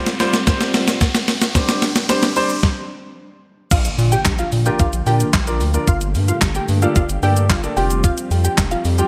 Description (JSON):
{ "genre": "dance-pop", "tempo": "111 BPM", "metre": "4/4", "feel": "straight", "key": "Bb major", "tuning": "A4 = 440 Hz", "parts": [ { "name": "clear grand piano", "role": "accompaniment", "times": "0.0-9.1 s", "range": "G3 to D5", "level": "-25 LUFS", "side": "equal", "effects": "subtle chorus, sidechain pumping" }, { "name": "string machine, cellos", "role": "sustained chords", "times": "0.0-9.1 s", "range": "D3 to C5", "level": "-30 LUFS", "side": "equal", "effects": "ensemble chorus, sidechain pumping" }, { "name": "riser and impact", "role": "sound effects", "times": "0.0-5.9 s", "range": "none", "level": "-30 LUFS", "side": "equal", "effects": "none" }, { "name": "clean 12-bit digital drum machine", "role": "drums", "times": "0.1-9.1 s", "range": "crash cymbal, handclaps, hi-hat, kick drum, shaker, snare drum", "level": "-21 LUFS", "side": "equal", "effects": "gated reverb" }, { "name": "unison pluck", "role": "melody", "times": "3.7-9.1 s", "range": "F4 to G5", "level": "-25 LUFS", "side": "equal", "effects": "sidechain pumping, delay" }, { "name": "round analog bass", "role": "bass", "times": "3.7-9.0 s", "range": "F1 to Bb2", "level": "-20 LUFS", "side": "equal", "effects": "sidechain pumping" } ], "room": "moderate plate reverb, RT60 2.1 s", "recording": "bright 1980s-style digital production", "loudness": "-17 LUFS", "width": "mono", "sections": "0.0-3.7 A section; 3.7-9.1 B section", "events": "build-up 0.0-3.7; drum fill 0.0-2.6; riser 0.0-3.7; stop 2.6-3.7; drop 3.7-9.1; impact 3.7-5.9", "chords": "0.0 Fsus2; 1.6 Csus2; 2.6 N.C.; 3.7 Bb; 5.9 Gmadd9; 7.8 Fsus2" }